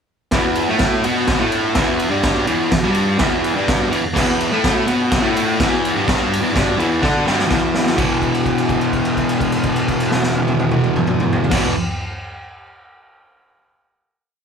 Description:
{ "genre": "garage rock duo or trio", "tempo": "126 BPM", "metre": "4/4", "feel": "straight", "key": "unclear", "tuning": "A4 = 440 Hz", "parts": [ { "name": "fuzz guitar", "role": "riff", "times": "0.3-11.7 s", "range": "E2 to D4", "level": "-17 LUFS", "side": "equal", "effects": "distortion" }, { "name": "raw garage drum kit", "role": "drums", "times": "0.3-11.6 s", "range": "crash cymbal, kick drum, ride cymbal, snare drum, toms", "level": "-19 LUFS", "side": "equal", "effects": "none" } ], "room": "light reverb", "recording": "band playing live in one room", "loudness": "-15 LUFS", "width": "side -6 dB against mid", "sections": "0.3-8.0 riff; 8.0-11.8 final chord", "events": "drum fill 7.0-8.0; held note 8.0-11.5", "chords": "0.3 E5" }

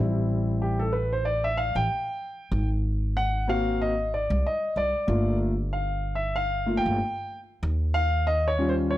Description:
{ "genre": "hip hop, jazz-hop", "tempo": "94 BPM", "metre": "4/4", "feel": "swing 57% on 16ths", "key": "unclear", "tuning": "A4 = 443 Hz", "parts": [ { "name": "dark baby grand piano", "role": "accompaniment", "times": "0.0-9.0 s", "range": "G3 to G5", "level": "-26 LUFS", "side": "left 1 dB", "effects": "none" }, { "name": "upright bass", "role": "bass", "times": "0.0-9.0 s", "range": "G1 to Eb2", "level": "-27 LUFS", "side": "equal", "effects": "none" } ], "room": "light reverb", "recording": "dry, gritty hardware recording", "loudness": "-24 LUFS", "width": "side -14 dB against mid", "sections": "0.0-9.0 A section", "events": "grand piano solo 0.0-9.0", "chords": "0.0 Am7; 2.5 G#9; 5.1 Gm9; 7.6 Eb9" }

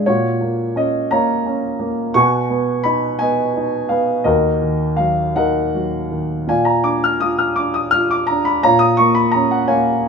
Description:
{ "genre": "classical, lyrical solo piano", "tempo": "56 BPM (dotted quarters)", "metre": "6/8", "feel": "uneven beats, rubato", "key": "unclear", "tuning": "A4 = 439 Hz", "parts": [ { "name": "warm grand piano", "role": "solo", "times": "0.0-10.1 s", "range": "D#2 to E#6", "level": "-15 LUFS", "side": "equal", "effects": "none" } ], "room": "moderate small room reverb, RT60 0.5 s", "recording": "minimal, uncompressed stereo recording", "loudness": "-15 LUFS", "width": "side -5 dB against mid", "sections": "0.0-10.1 A section", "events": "none", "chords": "0.1 F#maj7/A#; 2.2 G#m7/B; 4.3 D#m; 6.5 A#; 8.6 A#m7" }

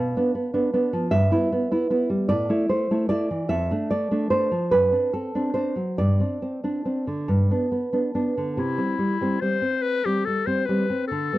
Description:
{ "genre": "romantic duo for clarinet and classical guitar", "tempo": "46-52 BPM (dotted quarters)", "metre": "6/8", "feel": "rubato", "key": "C major", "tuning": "A4 = 440 Hz", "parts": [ { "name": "nylon-string guitar", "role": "accompaniment", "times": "0.0-11.4 s", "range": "F2 to F5", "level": "-22 LUFS", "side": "right 1 dB", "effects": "none" }, { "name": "bright clarinet", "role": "melody", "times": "8.6-11.4 s", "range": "E4 to C5", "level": "-25 LUFS", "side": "left 5 dB", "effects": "none" } ], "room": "little or no reverb", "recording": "dry, close 1970s-style studio recording, lossy compression artefacts", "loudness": "-21 LUFS", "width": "side -16 dB against mid", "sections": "0.0-8.6 A section; 8.6-11.4 B section", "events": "none", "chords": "0.0 Bdim; 1.1 Em/G; 2.3 A5; 3.5 Dm/F; 4.7 D7/F#; 6.0 Gsus4; 7.3 G; 8.6 C" }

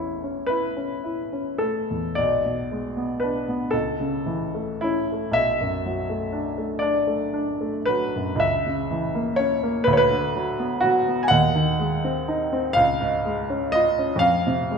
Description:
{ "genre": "classical, romantic nocturne for solo piano", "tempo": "34-42 BPM (dotted quarters)", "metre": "6/8", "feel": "rubato", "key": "Db major from 11.3 s", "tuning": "A4 = 439 Hz", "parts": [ { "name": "clear grand piano", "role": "solo", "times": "0.0-14.8 s", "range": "A1 to G#5", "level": "-21 LUFS", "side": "equal", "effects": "none" } ], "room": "wet recital hall reverb, RT60 1.4 s", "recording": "recorded in a church or concert hall", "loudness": "-21 LUFS", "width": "side -6 dB against mid", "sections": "0.0-14.8 A section", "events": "none", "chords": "0.0 A; 2.2 G#dim/B; 3.7 A/C#; 5.4 Bm7; 8.4 A#dim/C#; 9.9 Bm/D; 11.3 Ab7/Eb; 12.8 Db; 14.2 F5" }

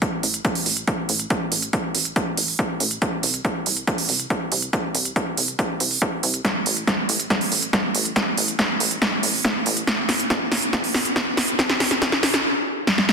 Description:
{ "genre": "uplifting trance", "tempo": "140 BPM", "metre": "4/4", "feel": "straight", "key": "A minor", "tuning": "A4 = 440 Hz", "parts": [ { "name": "big-room dance drum kit", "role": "drums", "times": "0.0-13.1 s", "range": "hi-hat, snare drum", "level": "-20 LUFS", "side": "right 1 dB", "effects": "overdrive" }, { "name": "electronic kick drum", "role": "drums", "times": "0.0-12.1 s", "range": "none", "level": "-25 LUFS", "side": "equal", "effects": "overdrive, high-pass filter on kick, high-pass filter on room" }, { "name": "plucky analog bass", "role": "bass", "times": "0.2-12.4 s", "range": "F1 to C2", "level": "-30 LUFS", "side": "equal", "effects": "sidechain pumping, high-pass filter" } ], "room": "moderate lush hall reverb, RT60 2.4 s", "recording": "dense, heavily limited modern master", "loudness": "-19 LUFS", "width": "side -5 dB against mid", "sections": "0.0-13.1 A section", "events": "build-up 0.0-13.1; drum fill 6.4-12.4, 12.9", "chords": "none" }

